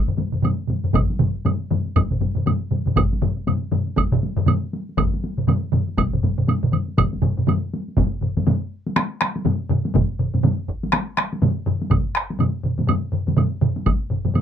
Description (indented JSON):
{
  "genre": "japanese traditional, taiko drum ensemble",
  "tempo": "121 BPM",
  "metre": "4/4",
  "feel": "swing 60% on 16ths",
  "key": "none",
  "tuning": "none",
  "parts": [
    { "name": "solo taiko drums", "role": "percussion", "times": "0.1-14.4 s", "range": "none", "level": "-26 LUFS", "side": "left 1 dB", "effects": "none" },
    { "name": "solo taiko drums", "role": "percussion", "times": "0.1-14.4 s", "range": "none", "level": "-23 LUFS", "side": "left 3 dB", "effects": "none" },
    { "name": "taiko ensemble", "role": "percussion", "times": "0.1-14.4 s", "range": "none", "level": "-23 LUFS", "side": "right 4 dB", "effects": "none" },
    { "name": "woodblock", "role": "percussion", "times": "0.4-7.6, 11.9-14.4 s", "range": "none", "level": "-26 LUFS", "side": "right 7 dB", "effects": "none" },
    { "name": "taiko ensemble", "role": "percussion", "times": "0.9-14.0 s", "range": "none", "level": "-24 LUFS", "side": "equal", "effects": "none" }
  ],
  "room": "wet booth ambience, RT60 0.2 s",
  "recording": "dark, warm production",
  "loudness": "-19 LUFS",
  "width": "side -9 dB against mid",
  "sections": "0.0-8.0 A section; 8.0-14.4 B section",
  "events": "speeding up 0.0-14.4",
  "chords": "none"
}